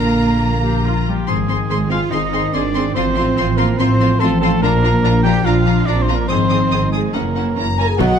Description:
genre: cinematic, heroic adventure film score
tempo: 143 BPM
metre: 4/4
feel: straight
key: Ab lydian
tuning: A4 = 440 Hz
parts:
  - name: rich symphonic violin section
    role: melody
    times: 0.0-8.2 s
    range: Gb5 to Eb6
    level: -25 LUFS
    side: left 3 dB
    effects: none
  - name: rich symphonic violin section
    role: second line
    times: 0.0-7.9 s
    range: Fb4 to Ab4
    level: -29 LUFS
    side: left 2 dB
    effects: none
  - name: warm cor anglais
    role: second line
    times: 0.0-8.2 s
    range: G4 to G5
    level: -22 LUFS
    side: right 2 dB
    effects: none
  - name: clear symphonic viola section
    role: accompaniment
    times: 0.0-8.2 s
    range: F#3 to G4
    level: -26 LUFS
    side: right 1 dB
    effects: none
  - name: clear trombone section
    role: sustained chords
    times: 0.0-8.2 s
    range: D3 to Eb4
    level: -24 LUFS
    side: right 3 dB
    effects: none
  - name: concert harp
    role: arpeggios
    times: 0.0-8.2 s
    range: Gb2 to D5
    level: -22 LUFS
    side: left 12 dB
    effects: none
  - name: rich studio double bass section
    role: bass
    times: 0.0-8.1 s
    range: Gb1 to B1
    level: -20 LUFS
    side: right 1 dB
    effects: none
  - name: rich symphonic cello section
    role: bass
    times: 0.0-8.1 s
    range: B2 to G4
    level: -22 LUFS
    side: right 3 dB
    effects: none
  - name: mellow hollow concert flute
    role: second line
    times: 7.8-8.2 s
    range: F#5 to Bb5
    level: -26 LUFS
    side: left 4 dB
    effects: none
  - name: dark French horn section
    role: sustained chords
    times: 7.8-8.2 s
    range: F#4 to Bb4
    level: -21 LUFS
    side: left 5 dB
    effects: none
  - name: warm trumpet section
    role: stabs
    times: 7.8-8.2 s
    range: F#5 to Bb5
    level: -22 LUFS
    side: right 4 dB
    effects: none
  - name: dark clarinet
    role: second line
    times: 8.0-8.2 s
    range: D#5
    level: -25 LUFS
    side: left 2 dB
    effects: none
  - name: mellow tuba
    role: bass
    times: 8.0-8.1 s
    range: B1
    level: -19 LUFS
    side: right 4 dB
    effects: none
  - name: clash cymbals and concert bass drum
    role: drums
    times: 8.0-8.2 s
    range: none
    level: -23 LUFS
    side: left 1 dB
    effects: none
room: wet recital hall reverb, RT60 1.6 s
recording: dark, warm production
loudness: -14 LUFS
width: side -7 dB against mid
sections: 0.0-8.0 A section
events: none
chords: 0.0 Bb; 1.3 Ab; 3.0 F/A; 4.6 Bb; 6.3 Ab; 7.1 Gb7

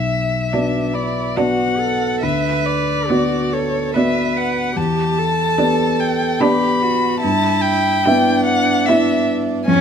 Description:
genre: classical, slow romantic movement for piano quartet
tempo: 73 BPM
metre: 3/4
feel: uneven beats, rubato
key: unclear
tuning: A4 = 440 Hz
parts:
  - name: warm violin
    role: melody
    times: 0.0-9.8 s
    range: C#5 to B5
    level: -20 LUFS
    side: left 3 dB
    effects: none
  - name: dark grand piano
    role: accompaniment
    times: 0.0-9.8 s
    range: B1 to E5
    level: -19 LUFS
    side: left 2 dB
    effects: none
  - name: warm cello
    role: second line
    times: 0.5-9.8 s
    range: C#4 to B4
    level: -22 LUFS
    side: right 9 dB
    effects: none
  - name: rich viola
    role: accompaniment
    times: 0.5-9.8 s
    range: B3 to E4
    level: -24 LUFS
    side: right 5 dB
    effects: none
room: light reverb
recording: close, detailed microphones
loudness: -15 LUFS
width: side -7 dB against mid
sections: 0.0-9.8 A section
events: none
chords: 0.0 Bm; 2.2 Bm/D; 4.8 Em7; 7.2 Em/G

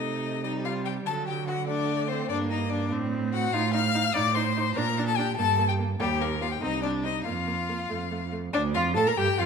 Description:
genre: quick classical-period movement for string quartet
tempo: 97 BPM (dotted quarters)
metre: 6/8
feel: straight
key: Bb major from 3.5 s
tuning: A4 = 439 Hz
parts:
  - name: rich violin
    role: melody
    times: 0.0-9.5 s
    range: G4 to F6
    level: -29 LUFS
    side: left 8 dB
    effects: none
  - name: rich violin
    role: second line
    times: 0.0-9.5 s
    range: G3 to F5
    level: -32 LUFS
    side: left 2 dB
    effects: none
  - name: rich viola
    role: accompaniment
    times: 0.0-9.5 s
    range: F#3 to Bb4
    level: -32 LUFS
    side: right 2 dB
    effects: none
  - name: rich cello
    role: bass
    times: 0.0-9.5 s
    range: C2 to D3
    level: -30 LUFS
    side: right 5 dB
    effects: none
room: moderate recital hall reverb, RT60 1.5 s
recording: none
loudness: -24 LUFS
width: side -6 dB against mid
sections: 0.0-8.5 A section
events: none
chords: 0.0 Adim/C; 1.1 D; 2.3 Gm; 2.9 Am6; 3.5 F7/A; 4.8 Bb; 5.4 Gm; 6.0 Eb5; 6.6 Cmadd9; 7.3 Bb5/F; 7.9 F; 8.5 Bb/D

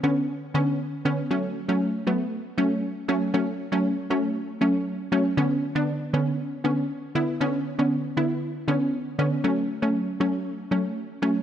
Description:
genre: pop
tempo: 118 BPM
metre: 4/4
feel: straight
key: B minor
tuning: A4 = 445 Hz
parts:
  - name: wide unison pluck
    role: solo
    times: 0.0-11.4 s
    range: D3 to E4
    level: -23 LUFS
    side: equal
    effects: none
room: moderate lush hall reverb, RT60 2.2 s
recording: none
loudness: -23 LUFS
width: side -10 dB against mid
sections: 0.0-11.4 A section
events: none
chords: 0.0 Bmadd9; 1.3 F#m; 5.4 Bmadd9; 9.4 F#m

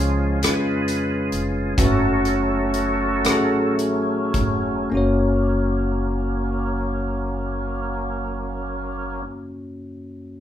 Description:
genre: slow gospel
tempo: 33-47 BPM (dotted quarters)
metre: 6/8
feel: straight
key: F# harmonic minor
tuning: A4 = 440 Hz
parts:
  - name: bell-like tine electric piano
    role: accompaniment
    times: 0.0-10.4 s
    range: F#2 to C#5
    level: -23 LUFS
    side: left 2 dB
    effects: none
  - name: bright tonewheel organ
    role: sustained chords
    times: 0.0-9.2 s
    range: E#3 to B4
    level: -26 LUFS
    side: right 2 dB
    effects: slow rotary speaker
  - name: upright bass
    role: bass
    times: 0.0-9.2 s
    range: E#1 to E#2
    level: -27 LUFS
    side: equal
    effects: none
  - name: natural country drum kit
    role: drums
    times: 0.0-4.6 s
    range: hi-hat, kick drum, rim click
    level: -23 LUFS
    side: right 1 dB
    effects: none
room: moderate large studio reverb, RT60 0.8 s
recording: band playing live in one room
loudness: -20 LUFS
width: side -10 dB against mid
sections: 0.0-4.9 A section; 4.9-8.5 B section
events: slowing down 0.0-4.9; tonewheel organ solo 0.0-4.9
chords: 0.0 C#; 1.8 F#m; 4.9 F#

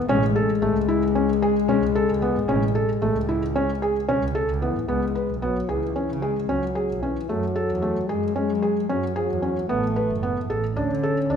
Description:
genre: contemporary instrumental, chamber music in an uneven meter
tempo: 225 BPM (eighths)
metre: 9/8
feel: straight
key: unclear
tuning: A4 = 438 Hz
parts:
  - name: dark French horn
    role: second line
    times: 0.0-11.4 s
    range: E3 to C#4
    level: -25 LUFS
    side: left 6 dB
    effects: none
  - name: warm double bass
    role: bass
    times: 0.0-11.4 s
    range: F#1 to F#3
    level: -28 LUFS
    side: right 4 dB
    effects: none
  - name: felt-muted upright piano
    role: arpeggios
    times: 0.1-11.4 s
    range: A3 to B4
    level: -24 LUFS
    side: right 2 dB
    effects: none
  - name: frame drum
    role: percussion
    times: 0.1-4.3 s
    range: none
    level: -33 LUFS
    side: left 2 dB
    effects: none
room: moderate recital hall reverb, RT60 1.7 s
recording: minimal, uncompressed stereo recording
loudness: -21 LUFS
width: side -7 dB against mid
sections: 0.0-4.9 A section; 4.9-11.4 B section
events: none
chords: 0.1 Amaj7; 4.9 C#m7; 7.3 F#madd9; 9.7 Asus2; 10.8 D5

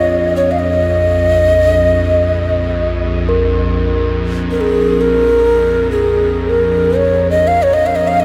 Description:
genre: world meditative, free-time meditation music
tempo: free time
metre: none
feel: none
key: unclear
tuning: A4 = 440 Hz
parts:
  - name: breathy mellow Native American-style cedar flute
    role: melody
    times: 0.0-8.2 s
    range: Ab4 to F5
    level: -15 LUFS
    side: equal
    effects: shimmer reverb, diffuse ambient delay
  - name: evolving wavetable pad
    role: drone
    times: 0.0-8.2 s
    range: Bb1 to F2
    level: -19 LUFS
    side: equal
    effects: chorus, built-in reverb
  - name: quartz singing bowl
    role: texture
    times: 0.0-8.2 s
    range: F4 to Bb4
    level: -24 LUFS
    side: equal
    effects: shimmer reverb
room: wet huge ambient reverb, RT60 5.1 s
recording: none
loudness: -14 LUFS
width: mono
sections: 0.0-8.2 A section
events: none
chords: none

